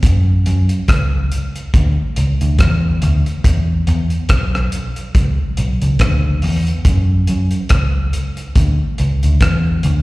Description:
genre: lovers rock reggae.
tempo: 70 BPM.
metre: 4/4.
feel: swing 56% on 16ths.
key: unclear.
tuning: A4 = 440 Hz.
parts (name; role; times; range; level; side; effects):
vintage muted picked electric bass; bass; 0.0-10.0 s; B1 to F#2; -14 LUFS; equal; none.
cloth-damped thuddy drum kit; drums; 0.0-10.0 s; hi-hat, kick drum, rim click; -17 LUFS; equal; none.
room: little or no reverb.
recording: live gig heard through the venue's PA, recital hall reverb.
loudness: -13 LUFS.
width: side -20 dB against mid.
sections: 0.0-10.0 A section.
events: none.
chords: none.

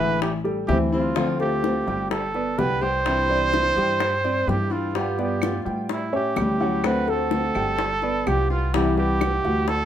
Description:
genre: latin, Cuban son and guajira.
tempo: 127 BPM.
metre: 4/4.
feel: straight.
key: C major.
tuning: A4 = 439 Hz.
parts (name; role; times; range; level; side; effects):
breathy trumpet; melody; 0.0-9.8 s; E4 to C5; -24 LUFS; right 3 dB; none.
nylon-string guitar; accompaniment; 0.0-9.7 s; C3 to G4; -27 LUFS; left 2 dB; none.
warm concert grand piano; arpeggios; 0.0-9.8 s; E3 to G5; -27 LUFS; equal; none.
upright bass; bass; 0.0-9.8 s; G1 to A2; -28 LUFS; equal; none.
bongos; percussion; 0.2-9.8 s; none; -31 LUFS; left 6 dB; none.
claves; percussion; 5.4-9.4 s; none; -35 LUFS; right 1 dB; none.
room: moderate studio reverb, RT60 0.6 s.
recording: minimal, uncompressed stereo recording.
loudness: -20 LUFS.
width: side -10 dB against mid.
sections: 0.0-9.8 A section.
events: none.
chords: 0.2 Am7; 1.2 Dm7; 2.1 Gadd9; 3.1 Cadd9; 5.0 G7; 5.9 A7; 6.8 D7; 7.8 G7; 8.7 Cmaj7.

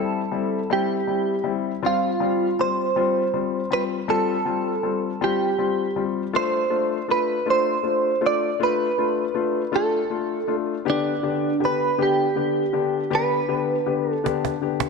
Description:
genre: six-eight pop ballad.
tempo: 53 BPM (dotted quarters).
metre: 6/8.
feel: straight.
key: unclear.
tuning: A4 = 439 Hz.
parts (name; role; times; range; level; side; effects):
direct-recorded clean electric guitar; melody; 0.0-14.6 s; D4 to D5; -22 LUFS; right 4 dB; analog chorus.
warm concert grand piano; accompaniment; 0.0-14.9 s; D3 to G4; -24 LUFS; left 11 dB; none.
cajon; drums; 14.3-14.9 s; none; -27 LUFS; right 10 dB; none.
room: moderate echo chamber reverb, RT60 2.4 s.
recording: 1960s-style stereo with parts hard left and right.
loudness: -20 LUFS.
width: side -4 dB against mid.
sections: 0.0-14.9 A section.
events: drum fill 14.2-14.9.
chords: 0.0 C; 1.8 Fsus2; 6.3 Dm; 10.9 G/D.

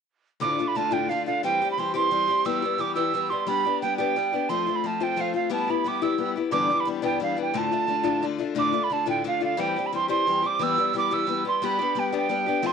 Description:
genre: celtic folk.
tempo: 118 BPM (dotted quarters).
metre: 6/8.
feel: straight.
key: D dorian.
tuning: A4 = 440 Hz.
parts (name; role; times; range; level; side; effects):
wooden whistle; melody; 0.4-12.7 s; F5 to E6; -24 LUFS; right 7 dB; none.
picked steel-string acoustic guitar; accompaniment; 0.4-12.7 s; D2 to G4; -26 LUFS; left 8 dB; none.
room: wet studio reverb, RT60 0.5 s.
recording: home recording on cassette.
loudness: -22 LUFS.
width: side -6 dB against mid.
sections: 0.4-8.6 A section; 8.6-12.7 A section.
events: none.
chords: 0.4 Dm; 1.4 C/E; 2.5 Em; 3.5 G; 4.5 F; 5.5 Em/G; 6.5 G6; 7.5 Dm; 9.6 C/E; 10.6 Em; 11.6 G.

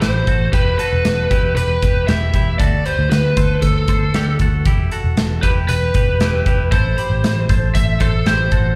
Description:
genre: jangly indie pop.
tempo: 116 BPM.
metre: 4/4.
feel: straight.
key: E minor.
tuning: A4 = 440 Hz.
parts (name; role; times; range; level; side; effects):
lead guitar through a small cranked amp; melody; 0.0-8.8 s; A4 to E5; -23 LUFS; equal; overdrive, plate reverb, slapback echo.
twelve-string electric guitar; arpeggios; 0.0-8.8 s; D4 to B5; -28 LUFS; equal; plate reverb, slapback echo.
vintage muted picked electric bass; bass; 0.0-8.7 s; E1 to D2; -20 LUFS; equal; none.
big rock drum kit; drums; 0.0-8.6 s; hi-hat, kick drum, snare drum; -21 LUFS; equal; none.
room: light reverb.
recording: live gig heard through the venue's PA, club reverb.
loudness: -16 LUFS.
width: mono.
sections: 0.0-8.8 A section.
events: none.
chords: 0.0 Am; 0.5 Em; 2.6 D; 4.7 Em; 6.7 Am.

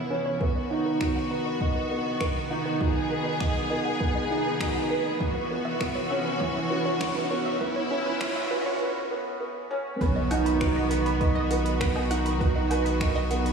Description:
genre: piano and strings electronica.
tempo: 100 BPM.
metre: 4/4.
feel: straight.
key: B major.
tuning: A4 = 440 Hz.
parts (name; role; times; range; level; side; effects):
bright symphonic string section; sustained chords; 0.0-13.5 s; D#3 to G#4; -30 LUFS; left 1 dB; none.
wide unison pluck; arpeggios; 0.0-13.5 s; B4 to B5; -35 LUFS; right 3 dB; sidechain pumping, diffuse ambient delay.
felt-muted upright piano; riff; 0.0-13.5 s; B3 to D#5; -28 LUFS; right 2 dB; lush chorus, diffuse ambient delay.
electronic kick drum; drums; 0.4-13.1 s; none; -29 LUFS; right 1 dB; overdrive.
riser and impact; sound effects; 2.0-12.4 s; none; -38 LUFS; right 1 dB; none.
deep house drum kit; drums; 1.0-13.5 s; finger snaps, hi-hat, woodblock; -38 LUFS; equal; overdrive, low-pass filter on snare, low-pass filter on hats, low-pass filter on perc, low-pass filter on room.
round analog bass; bass; 10.0-13.5 s; B1; -29 LUFS; equal; sidechain pumping.
room: wet lush hall reverb, RT60 2.7 s.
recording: dreamy mix soaked in reverb, high-pass filter, studio reverb.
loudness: -24 LUFS.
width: side -5 dB against mid.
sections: 0.4-10.0 A section; 10.0-13.5 B section.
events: build-up 0.4-10.0; filter sweep on synth arpeggio sound 0.4-10.0; riser 2.0-8.8; break 8.8-10.0; drop 10.0-13.5; impact 10.0-12.4.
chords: 0.4 B; 5.2 F#7sus4; 10.0 B.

